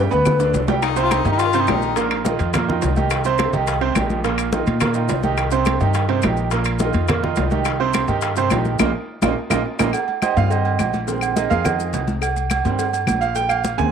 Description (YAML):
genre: latin, salsa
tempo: 211 BPM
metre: 4/4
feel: straight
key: C minor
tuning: A4 = 440 Hz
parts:
  - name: mellow hollow wooden-headed alto flute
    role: melody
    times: 0.0-0.6 s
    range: B4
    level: -21 LUFS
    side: left 4 dB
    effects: none
  - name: bright concert grand piano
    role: accompaniment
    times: 0.0-13.9 s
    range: Bb2 to B5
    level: -21 LUFS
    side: right 8 dB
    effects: none
  - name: upright bass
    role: bass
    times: 0.0-13.9 s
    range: Bb1 to Bb2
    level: -22 LUFS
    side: left 2 dB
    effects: none
  - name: bongos and cowbell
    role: percussion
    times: 0.1-13.9 s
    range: none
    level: -29 LUFS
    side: left 12 dB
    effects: none
  - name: congas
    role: percussion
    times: 0.1-13.9 s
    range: none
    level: -26 LUFS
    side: left 2 dB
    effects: none
  - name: maracas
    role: percussion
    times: 0.1-13.9 s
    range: none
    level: -36 LUFS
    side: left 14 dB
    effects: none
  - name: timbales and agogo bells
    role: percussion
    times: 0.1-13.9 s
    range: none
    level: -26 LUFS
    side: right 9 dB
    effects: none
  - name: claves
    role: percussion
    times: 0.3-13.6 s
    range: none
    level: -28 LUFS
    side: left 14 dB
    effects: none
  - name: breathy baritone saxophone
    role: second line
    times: 0.8-2.2 s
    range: Eb4 to F4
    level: -21 LUFS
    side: left 9 dB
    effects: none
room: wet spring reverb, RT60 1.3 s, small room ambience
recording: 1960s-style stereo with parts hard left and right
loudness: -17 LUFS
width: side -7 dB against mid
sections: 0.8-9.9 A section; 9.9-13.9 B section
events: drum fill 0.0-0.8, 8.8-9.9; band accent 8.8-9.9; grand piano solo 9.9-13.9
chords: 0.0 G; 0.8 Cm; 2.0 Bbsus4; 3.1 Cm; 4.2 Bbsus4; 5.4 Cm; 6.5 Bbsus4; 7.7 Cm; 8.8 Bbsus4; 9.9 Cm; 11.1 Bb7sus4; 12.2 Cm; 13.4 Bb7sus4